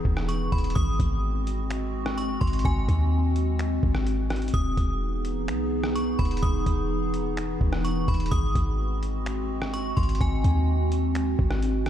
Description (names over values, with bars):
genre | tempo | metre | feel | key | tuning
hip hop, atmospheric cloud-rap | 127 BPM | 4/4 | half-time | unclear | A4 = 441 Hz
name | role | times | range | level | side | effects
warbly tape-like pad | sustained chords | 0.0-11.9 s | E3 to G#4 | -29 LUFS | equal | chorus, built-in reverb, sidechain pumping
clean 808-style bass | bass | 0.1-11.9 s | E1 to D#2 | -26 LUFS | equal | none
trip hop sampler-style drum kit | drums | 0.1-11.9 s | finger snaps, hi-hat, kick drum, rim click | -28 LUFS | equal | none
metallic FM bell | melody | 0.3-10.7 s | G#5 to D#6 | -35 LUFS | equal | chorus, diffuse ambient delay
room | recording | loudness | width
light reverb | none | -23 LUFS | side -10 dB against mid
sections
0.0-11.9 A section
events
none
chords
0.0 Emaj7; 0.8 G#7; 4.5 Emaj7; 8.3 G#7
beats
0.29 | 0.76 1.23 1.70 2.18 | 2.65 3.12 3.59 4.07 | 4.54 5.01 5.48 5.96 | 6.43 6.90 7.37 7.85 | 8.32 8.79 9.26 9.73 | 10.21 10.68 11.15 11.62